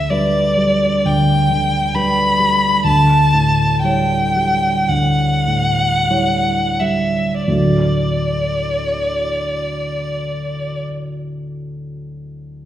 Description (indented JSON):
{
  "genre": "classical, romantic duo for violin and grand piano",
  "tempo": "41-69 BPM",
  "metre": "4/4",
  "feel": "rubato",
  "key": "D major",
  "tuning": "A4 = 440 Hz",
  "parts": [
    { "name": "rich violin", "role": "melody", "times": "0.0-10.8 s", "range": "D5 to B5", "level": "-17 LUFS", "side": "left 1 dB", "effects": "none" },
    { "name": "dark concert grand piano", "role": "accompaniment", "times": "0.0-12.7 s", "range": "D2 to C#5", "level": "-18 LUFS", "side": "right 1 dB", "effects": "none" }
  ],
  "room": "wet recital hall reverb, RT60 1.4 s",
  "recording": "heard from further back in the room",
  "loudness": "-14 LUFS",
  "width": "side -12 dB against mid",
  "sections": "0.0-7.5 A section; 7.5-12.5 B section",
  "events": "slowing down 0.0-7.5",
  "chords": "0.0 G/D; 2.8 A7/D; 7.5 D"
}